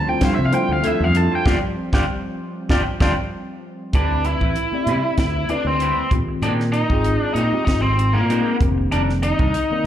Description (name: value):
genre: electric jazz fusion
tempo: 97 BPM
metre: 4/4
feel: straight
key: unclear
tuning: A4 = 441 Hz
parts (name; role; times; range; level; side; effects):
- biting lead guitar; melody; 0.0-9.9 s; Bb3 to A5; -22 LUFS; equal; overdrive, slapback echo
- airy breathy pad; sustained chords; 0.0-3.9 s; F3 to C4; -28 LUFS; left 1 dB; chorus
- modern bright fingered electric bass; bass; 0.0-9.9 s; F1 to C3; -21 LUFS; equal; none
- tine electric piano; accompaniment; 0.1-9.9 s; Eb3 to D5; -25 LUFS; left 1 dB; medium stereo tremolo, lush chorus, slapback echo
- clean electric guitar; stabs; 0.1-9.7 s; G3 to C5; -32 LUFS; right 2 dB; lush chorus, slapback echo
- tight funk drum kit; drums; 0.2-9.7 s; hi-hat, kick drum, snare drum; -21 LUFS; equal; none
room: small room ambience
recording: live gig heard through the venue's PA, club ambience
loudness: -17 LUFS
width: side -10 dB against mid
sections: 0.0-3.9 A section; 3.9-9.9 B section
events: lead electric guitar solo 0.0-3.9; drum fill 1.5-3.9; band accent 1.5-3.9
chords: 0.0 G13sus4; 3.9 D13sus4; 6.1 Bb13sus4; 8.6 F13sus4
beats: 0.22 0.84 | 1.46 2.08 2.70 3.32 | 3.94 4.56 5.18 5.80 | 6.42 7.05 7.67 8.29 | 8.91 9.54